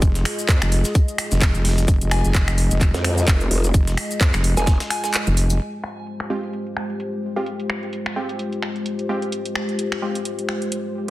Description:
bass house; 129 BPM; 4/4; swing 57% on 16ths; F minor; A4 = 442 Hz
dark analog pad; sustained chords; 0.0-11.1 s; Ab3 to Eb5; -28 LUFS; left 1 dB; chorus, sidechain pumping
wobble bass; bass; 0.0-5.6 s; F1; -19 LUFS; equal; chorus, overdrive, sidechain pumping
breakbeat sampler-style drum kit; drums; 0.0-5.6 s; hi-hat, snare drum, tambourine; -34 LUFS; left 1 dB; sidechain pumping on perc, high-pass filter on perc, high-pass filter on snare, sidechain pumping on hats, high-pass filter on hats, high-pass filter on room
electronic kick drum; drums; 0.0-4.8 s; -17 LUFS; equal; overdrive
house drum kit; drums; 0.0-10.8 s; finger snaps, handclaps, hi-hat; -26 LUFS; equal; low-pass filter on hats, soft clipping on snare, low-pass filter on snare, low-pass filter on room
cabasa; percussion; 0.0-5.6 s; -34 LUFS; left 3 dB
growl bass; bass; 0.5-4.8 s; F1 to F2; -20 LUFS; equal; chorus, sidechain pumping
soft synth bell; melody; 2.1-5.1 s; Ab5; -30 LUFS; right 1 dB; chorus, digital delay
band-passed chord stab; stabs; 6.3-10.2 s; Ab3 to G4; -28 LUFS; right 1 dB; chorus, sidechain pumping, digital delay
light reverb; dense, heavily limited modern master; -18 LUFS; side -16 dB against mid
0.0-5.6 A section; 5.6-11.1 B section
drop 0.0-5.6; kick drops out 5.1-5.6; filter sweep on drum 5.6-11.1; filter sweep on synth stab 5.6-11.1
0.0 Fm; 5.6 Fmadd9

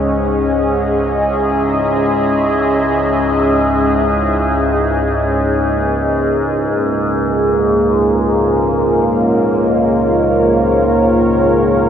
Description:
dark ambient drone; free time; A4 = 437 Hz
deep dark ambient pad; sustained chords; 0.0-11.9 s; A#3 to E5; -14 LUFS; equal; chorus, built-in reverb
overtone-sweeping drone; drone; 0.0-11.9 s; C#2 to G#2; -16 LUFS; equal; chorus, built-in reverb
wet huge ambient reverb, RT60 7.6 s; -12 LUFS; side -8 dB against mid
0.0-11.9 A section
0.0 C#m; 5.1 A#m

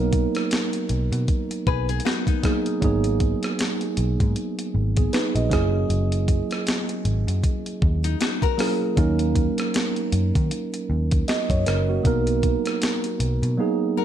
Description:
contemporary R&B; 78 BPM; 4/4; swing 58% on 16ths; A4 = 442 Hz
mellow tine electric piano; accompaniment; 0.0-14.0 s; F#3 to D#5; -24 LUFS; right 3 dB; wide subtle chorus
vintage muted picked electric bass; bass; 0.0-13.6 s; F#1 to D#3; -23 LUFS; equal
clean 12-bit digital drum machine; drums; 0.1-13.6 s; hi-hat, kick drum, rim click, snare drum; -24 LUFS; equal; vintage 12-bit sampler grit
nylon-string guitar; arpeggios; 1.7-2.8, 8.0-8.9, 14.0 s; B3 to B4; -28 LUFS; left 15 dB
light reverb, digital ambience; -20 LUFS; side -10 dB against mid
0.0-14.0 A section
drums muted 13.6-14.0
0.0 Bmaj7; 2.8 G#m9; 5.5 F#9; 9.0 D#m7; 12.1 Bmaj7

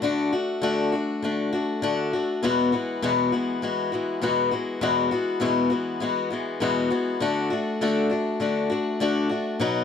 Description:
rock; 100 BPM; 4/4; straight; A4 = 439 Hz
picked swing-style acoustic guitar; solo; 0.0-9.8 s; E2 to F#4; -22 LUFS; left 3 dB
little or no reverb; dry, close 1970s-style studio recording; -22 LUFS; side -7 dB against mid
0.0-9.8 A section
0.0 D; 2.4 Eadd9; 7.2 D

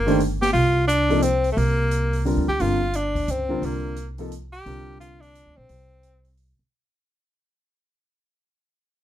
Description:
modal jazz; 175 BPM; 3/4; swing 62% on 8ths; A4 = 437 Hz
bright tenor saxophone; melody; 0.0-6.4 s; A3 to G4; -23 LUFS; equal
upright bass; bass; 0.0-6.6 s; G1 to D2; -24 LUFS; equal
warm baby grand piano; accompaniment; 0.1-5.6 s; C3 to C5; -24 LUFS; equal
open jazz drum kit; drums; 0.1-6.5 s; hi-hat, kick drum, snare drum; -34 LUFS; left 2 dB
light reverb; dark, warm production; -19 LUFS; side -12 dB against mid
0.0-6.7 A section
fade-out 0.0-6.7
0.0 C9sus4

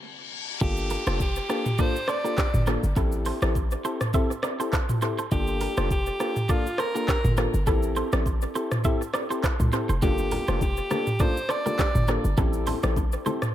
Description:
afrobeats; 102 BPM; 4/4; swing 55% on 16ths; G dorian; A4 = 441 Hz
reverse cymbal and downlifter; sound effects; 0.0-5.3 s; -37 LUFS; left 3 dB
edgy alto saxophone; melody; 0.6-12.1 s; F4 to D5; -30 LUFS; equal; tape echo
soft electric-piano-like synth keys; accompaniment; 0.6-13.4 s; Bb3 to A4; -30 LUFS; left 2 dB; chorus, tape echo
clean electric guitar; riff; 0.6-13.3 s; D4 to E5; -33 LUFS; right 6 dB; tape echo
short 808-style bass; bass; 0.6-13.2 s; F1 to C2; -26 LUFS; equal
afro-pop drum kit; drums; 0.6-13.5 s; handclaps, hi-hat, kick drum, rim click, shaker, toms; -26 LUFS; equal; tape echo
congas and bongos; percussion; 10.0-13.4 s; -34 LUFS; left 5 dB
light reverb; echo-heavy mix; -23 LUFS; side -12 dB against mid
0.6-13.5 A section
reverse cymbal 0.0-0.6; stop 0.0-0.6
0.0 N.C.; 0.6 Gm7; 3.0 Am7; 5.3 Gm7; 7.7 Am7; 10.0 Gm7; 12.4 Am7

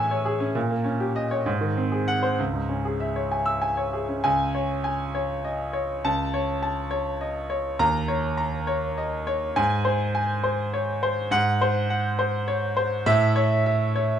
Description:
classical, virtuoso piano study; 68 BPM (dotted quarters); 6/8; rubato; C# minor; A4 = 437 Hz
clear grand piano; solo; 0.0-14.2 s; C#2 to E6; -22 LUFS; equal
light reverb; close, detailed microphones; -22 LUFS; side -9 dB against mid
0.0-4.2 A section; 4.2-14.2 A section
0.0 Amaj7; 0.6 D#7/A#; 1.5 G#7; 2.4 C#m; 4.2 C#5; 6.0 A/C#; 7.8 D#5; 9.6 G#; 11.3 G#7; 13.1 A

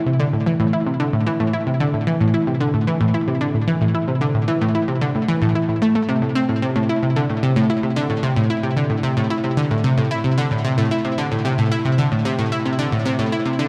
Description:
ambient; 112 BPM; 4/4; straight; A minor; A4 = 441 Hz
analog pluck; solo; 0.1-13.7 s; A2 to E4; -20 LUFS; equal; chorus, delay
wet concert hall reverb, RT60 2.0 s, digital ambience; -20 LUFS; mono
0.0-13.7 A section

